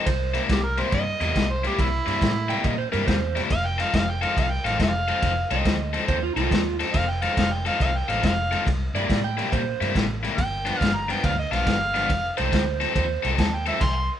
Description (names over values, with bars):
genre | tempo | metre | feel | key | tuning
electric blues shuffle | 140 BPM | 4/4 | swing 66% on 8ths | unclear | A4 = 440 Hz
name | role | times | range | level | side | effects
electric slide guitar | second line | 0.0-13.3 s | F4 to G5 | -29 LUFS | right 8 dB | none
cranked stack guitar | riff | 0.0-13.8 s | G2 to A4 | -27 LUFS | left 5 dB | overdrive
vintage muted fingered electric bass | bass | 0.1-14.1 s | F1 to Bb2 | -28 LUFS | equal | none
crunchy breakbeat drum kit | drums | 0.1-13.9 s | crash cymbal, kick drum, ride cymbal, snare drum | -26 LUFS | equal | none
overdriven harmonica | melody | 0.5-14.1 s | E4 to C6 | -26 LUFS | right 1 dB | none
room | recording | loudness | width
light reverb | band playing live in one room, nothing above 10.7 kHz | -21 LUFS | side -10 dB against mid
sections
0.0-14.2 A section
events
none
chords
0.1 C7; 3.5 F7; 8.7 C7; 10.4 G7; 12.1 F7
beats
| 0.06 0.49 0.92 1.35 | 1.78 2.21 2.64 3.07 | 3.50 3.93 4.36 4.79 | 5.22 5.65 6.08 6.51 | 6.94 7.37 7.80 8.23 | 8.66 9.09 9.52 9.94 | 10.37 10.80 11.23 11.66 | 12.09 12.52 12.95 13.38 | 13.81